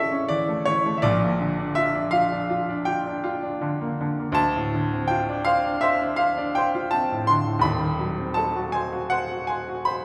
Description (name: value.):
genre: classical, romantic nocturne for solo piano.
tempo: 54 BPM (dotted quarters).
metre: 9/8.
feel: rubato.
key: unclear.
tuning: A4 = 440 Hz.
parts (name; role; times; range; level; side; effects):
clear baby grand piano; solo; 0.0-10.0 s; D#1 to C6; -24 LUFS; equal; none.
room: wet recital hall reverb, RT60 1.5 s.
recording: recorded in a church or concert hall.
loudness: -24 LUFS.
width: mono.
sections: 0.0-10.0 A section.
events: none.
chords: 0.0 A; 1.0 Bb; 4.4 Dm7; 7.6 D#dim7.